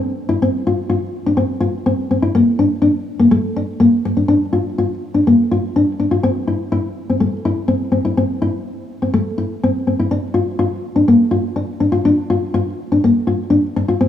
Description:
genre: highlife.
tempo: 124 BPM.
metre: 4/4.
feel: straight.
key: unclear.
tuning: A4 = 441 Hz.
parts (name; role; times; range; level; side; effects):
nylon-string guitar; solo; 0.0-14.1 s; A3 to F4; -14 LUFS; left 2 dB; none.
room: wet plate reverb, RT60 2.8 s.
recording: small room ambience.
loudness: -14 LUFS.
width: side -10 dB against mid.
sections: 0.0-6.2 A section; 6.2-14.1 B section.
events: none.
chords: none.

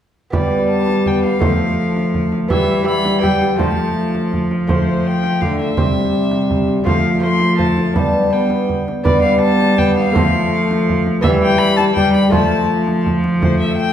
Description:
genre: classical, renaissance-style consort dance.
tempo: 165 BPM.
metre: 3/4.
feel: straight.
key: unclear.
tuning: A4 = 440 Hz.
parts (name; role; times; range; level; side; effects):
rich violin; melody; 0.3-13.9 s; C5 to C6; -22 LUFS; left 4 dB; none.
lute; accompaniment; 0.3-13.9 s; C3 to E5; -20 LUFS; equal; none.
warm trombone; accompaniment; 0.3-13.9 s; G3 to B3; -20 LUFS; left 2 dB; none.
rich cello; bass; 0.3-13.9 s; C3 to G3; -19 LUFS; right 1 dB; none.
frame drum; percussion; 0.3-13.6 s; none; -21 LUFS; right 2 dB; none.
room: wet recital hall reverb, RT60 1.4 s.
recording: heard from further back in the room.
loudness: -13 LUFS.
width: side -9 dB against mid.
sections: 0.3-9.1 A section; 9.1-13.9 A section.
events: none.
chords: 0.3 G; 1.4 F; 2.5 Em; 3.6 F; 5.8 C; 6.9 F; 8.0 G; 10.2 F; 11.2 Em; 12.3 F.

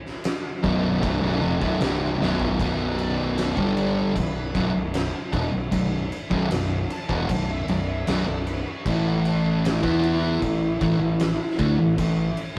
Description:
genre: stoner and doom metal.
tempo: 77 BPM.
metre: 4/4.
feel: straight.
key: B minor.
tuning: A4 = 440 Hz.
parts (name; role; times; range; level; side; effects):
oversized low-tuned drum kit; drums; 0.1-12.6 s; crash cymbal, kick drum, snare drum, toms; -32 LUFS; equal; none.
fuzz guitar; riff; 0.6-12.6 s; B1 to E4; -26 LUFS; equal; distortion.
fuzz fingered electric bass; bass; 0.6-12.6 s; B0 to E2; -31 LUFS; equal; overdrive.
fuzz lead guitar; melody; 3.0-12.0 s; D4 to A5; -32 LUFS; equal; wah, distortion.
room: light reverb.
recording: rough rehearsal-room recording, tube saturation.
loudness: -24 LUFS.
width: mono.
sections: 0.0-2.6 A section; 2.6-12.6 B section.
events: drum fill 2.2-2.6.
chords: 0.0 B5; 8.9 A5.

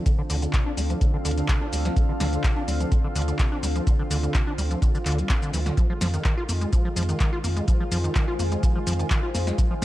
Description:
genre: acid house.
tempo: 126 BPM.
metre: 4/4.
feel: straight.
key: D minor.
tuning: A4 = 441 Hz.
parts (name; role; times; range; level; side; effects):
warm analog pad; sustained chords; 0.0-9.8 s; D3 to F4; -34 LUFS; right 1 dB; chorus, sidechain pumping.
deep acid bass; riff; 0.0-9.8 s; C3 to F4; -30 LUFS; equal; tube saturation, sidechain pumping, tape echo.
deep dark ambient pad; texture; 0.0-9.8 s; D4 to Ab5; -33 LUFS; left 1 dB; chorus, built-in reverb, sidechain pumping.
electro analog drum machine; drums; 0.1-9.8 s; handclaps, hi-hat, shaker, snare drum; -31 LUFS; left 1 dB; none.
electronic kick drum; drums; 0.1-9.7 s; none; -22 LUFS; equal; none.
warm sub bass; bass; 0.3-9.8 s; D2 to F2; -26 LUFS; equal; sidechain pumping.
room: digital ambience.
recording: none.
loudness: -21 LUFS.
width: side -15 dB against mid.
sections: 0.0-9.8 A section.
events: none.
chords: 0.0 Dm7; 5.8 Fm7.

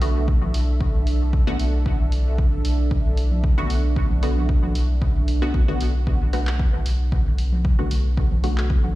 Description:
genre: dub techno.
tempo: 114 BPM.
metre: 4/4.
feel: swing 53% on 16ths.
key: B minor.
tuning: A4 = 440 Hz.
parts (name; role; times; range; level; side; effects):
dark analog pad; sustained chords; 0.0-9.0 s; D4 to E5; -32 LUFS; right 4 dB; chorus, sidechain pumping.
filtered dub chord stab; stabs; 0.0-9.0 s; D3 to F#4; -30 LUFS; left 1 dB; chorus, phaser, sidechain pumping, dub echo.
round analog bass; bass; 0.0-9.0 s; B1; -21 LUFS; equal; tube saturation, sidechain pumping.
punchy analog drum machine; drums; 0.0-8.7 s; handclaps, hi-hat; -35 LUFS; equal; none.
electronic kick drum; drums; 0.3-8.8 s; none; -22 LUFS; equal; overdrive.
electronic toms and congas; percussion; 0.4-8.9 s; none; -33 LUFS; equal; sidechain pumping on toms, sidechain pumping on perc, dub echo.
room: digital ambience.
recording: played on a big sound system in a bare room, large studio reverb.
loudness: -18 LUFS.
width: side -17 dB against mid.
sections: 0.0-9.0 A section.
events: none.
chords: 0.0 Bm7.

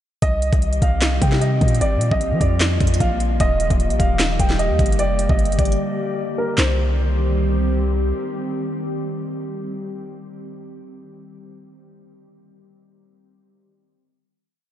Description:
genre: hip hop, trap.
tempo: 151 BPM.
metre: 4/4.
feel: half-time.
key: C minor.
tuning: A4 = 440 Hz.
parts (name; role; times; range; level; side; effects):
dark concert grand piano; melody; 0.2-7.7 s; Bb4 to G5; -25 LUFS; equal; low-pass filter, diffuse ambient delay.
glassy FM pad; sustained chords; 0.6-10.5 s; D3 to G4; -26 LUFS; equal; ensemble chorus, built-in reverb.
long sustained 808-style bass; bass; 0.2-8.1 s; Eb1 to F3; -20 LUFS; equal; none.
trap drum kit; drums; 0.2-6.7 s; handclaps, hi-hat, kick drum, snare drum; -20 LUFS; equal; overdrive.
room: moderate cathedral reverb, RT60 6.6 s.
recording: dreamy mix soaked in reverb, nothing above 10.9 kHz.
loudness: -17 LUFS.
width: side -12 dB against mid.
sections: 0.2-6.6 hook; 6.6-9.8 final chord.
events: break 5.8-6.6.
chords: 0.2 Cm; 1.8 Bb; 3.4 Eb; 5.0 Gm; 6.6 Cm.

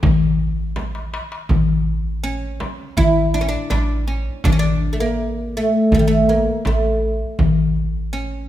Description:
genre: Turkish makam ensemble.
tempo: 81 BPM.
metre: 4/4.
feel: straight.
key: A makam hicaz.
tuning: A4 = 440 Hz.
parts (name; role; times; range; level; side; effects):
oud; melody; 0.0-8.5 s; G3 to E4; -19 LUFS; right 1 dB; none.
woody FM bass; bass; 0.0-8.5 s; A1; -21 LUFS; right 1 dB; none.
darbuka; percussion; 0.0-8.2 s; none; -22 LUFS; left 5 dB; none.
frame drum; percussion; 0.0-7.6 s; none; -24 LUFS; right 2 dB; none.
room: moderate recital hall reverb, RT60 1.4 s.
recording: recorded in a church or concert hall.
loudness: -16 LUFS.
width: side -12 dB against mid.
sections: 0.0-1.5 A section; 1.5-8.5 B section.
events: drum fill 0.8-1.5.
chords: none.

